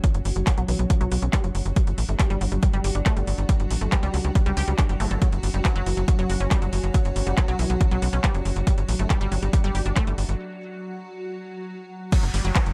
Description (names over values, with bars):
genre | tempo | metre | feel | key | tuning
psychedelic trance | 139 BPM | 4/4 | straight | unclear | A4 = 440 Hz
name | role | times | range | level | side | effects
evolving wavetable pad | sustained chords | 0.0-12.7 s | F#3 to F#4 | -38 LUFS | equal | ensemble chorus, built-in reverb, phaser, sidechain pumping
unison pluck | riff | 0.0-12.6 s | E3 to A4 | -34 LUFS | equal | sidechain pumping, digital delay
electronic kick drum | drums | 0.0-12.6 s | none | -23 LUFS | equal | none
techno drum kit | drums | 0.0-12.7 s | crash cymbal, handclaps, hi-hat | -34 LUFS | equal | none
warbly tape-like pad | texture | 0.0-10.4 s | C#4 to F#5 | -40 LUFS | equal | chorus, built-in reverb, sidechain pumping
tight sequencer bass | bass | 0.1-12.7 s | F#1 to C#2 | -26 LUFS | equal | none
zap and downlifter | sound effects | 5.0-5.1, 12.1-12.7 s | none | -38 LUFS | equal | none
room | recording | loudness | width
digital ambience | dark, warm production | -23 LUFS | mono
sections
0.0-12.1 A section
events
filter sweep on synth arpeggio sound 0.0-12.1; break 10.4-12.1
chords
0.0 F#5; 1.8 G5; 5.2 F#5; 8.7 G5; 12.1 F#5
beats
| 0.04 0.47 0.90 1.33 | 1.76 2.19 2.63 3.06 | 3.49 3.92 4.35 4.79 | 5.22 5.65 6.08 6.51 | 6.94 7.38 7.81 8.24 | 8.67 9.10 9.53 9.96 | 10.40 10.83 11.26 11.69 | 12.12 12.55